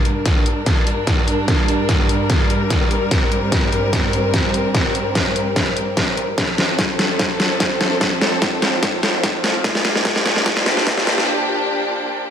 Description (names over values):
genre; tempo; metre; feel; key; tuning
heavy wobble dubstep; 147 BPM; 4/4; half-time; G minor; A4 = 444 Hz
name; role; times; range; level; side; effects
rich chamber string section; sustained chords; 0.0-12.3 s; F2 to Bb4; -20 LUFS; equal; sidechain pumping
dubstep drum kit; drums; 0.1-11.3 s; hi-hat, snare drum; -18 LUFS; equal; none
electronic kick drum; drums; 0.3-11.0 s; none; -21 LUFS; equal; none
room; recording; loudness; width
moderate lush hall reverb, RT60 1.9 s, digital ambience; high-pass filter; -15 LUFS; side -8 dB against mid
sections
0.0-12.3 A section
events
build-up 0.0-12.3; drum fill 0.0-11.3; filter sweep 0.0-12.3; break 11.3-12.3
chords
0.0 Gm; 6.4 F; 9.6 Bb6